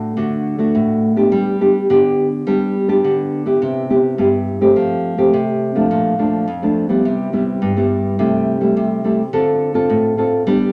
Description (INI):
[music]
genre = samba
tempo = 105 BPM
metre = 4/4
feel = straight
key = G major, C major from 3.6 s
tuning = A4 = 441 Hz
[part]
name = nylon-string guitar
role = solo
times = 0.0-10.7 s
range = F2 to A4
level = -16 LUFS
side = equal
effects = none
[sound]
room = wet large studio reverb, RT60 1.1 s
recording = none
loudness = -17 LUFS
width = mono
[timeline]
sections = 0.0-3.6 A section; 3.6-10.7 B section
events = none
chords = 0.0 D; 1.3 G; 3.6 Cmaj7; 4.8 Fadd9; 5.9 Bbmaj7; 7.0 Cmaj7; 8.2 Am7/C; 9.3 Dm7